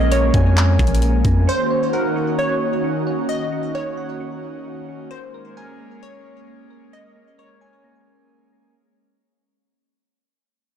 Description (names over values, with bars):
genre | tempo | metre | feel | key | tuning
hip hop, atmospheric cloud-rap | 132 BPM | 4/4 | half-time | unclear | A4 = 440 Hz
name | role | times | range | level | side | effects
glassy wavetable pluck | melody | 0.0-8.3 s | Bb4 to Eb5 | -24 LUFS | right 1 dB | chorus, digital delay
airy breathy pad | sustained chords | 0.0-8.7 s | Eb3 to Gb4 | -25 LUFS | equal | chorus, sidechain pumping
soft electric-piano-like synth keys | arpeggios | 0.0-8.8 s | Bb3 to Ab5 | -30 LUFS | right 4 dB | chorus, tremolo, digital delay
soft 808-style bass | bass | 0.0-1.5 s | Bb1 to F2 | -16 LUFS | equal | none
trap drum kit | drums | 0.1-1.4 s | handclaps, hi-hat, kick drum | -20 LUFS | equal | none
room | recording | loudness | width
light reverb, digital ambience | blown-out, overdriven recording, overdrive | -16 LUFS | side -9 dB against mid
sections
0.0-8.7 A section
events
fade-out 0.0-8.7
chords
0.0 Bbm7; 1.5 Ebm7; 5.1 Bbm7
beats
0.11 0.57 1.02 | 1.48 1.93 2.38 2.84 | 3.29 3.75 4.20 4.66 | 5.11 5.57 6.02 6.48 | 6.93 7.38 7.84 8.29